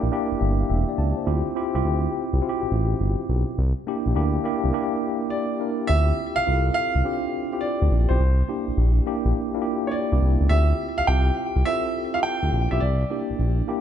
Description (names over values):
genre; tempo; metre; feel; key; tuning
R&B, new jack swing; 104 BPM; 4/4; swing 66% on 16ths; D minor; A4 = 439 Hz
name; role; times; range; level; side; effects
mellow tine electric piano; accompaniment; 0.0-13.8 s; Bb3 to A5; -26 LUFS; equal; medium stereo tremolo
smooth synth bass; bass; 0.0-13.6 s; E1 to D2; -22 LUFS; equal; none
clear baby grand piano; melody; 5.3-13.8 s; C5 to G5; -26 LUFS; right 2 dB; none
room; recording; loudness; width
light reverb; none; -20 LUFS; side -9 dB against mid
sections
0.0-5.9 A section; 5.9-13.8 B section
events
tine electric piano fill 0.1-1.3; break 4.7-5.9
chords
0.0 C9 (rootless); 1.3 Dm11; 3.6 C9 (rootless); 5.9 Dm11; 8.2 C9; 10.5 Dm11; 12.8 C9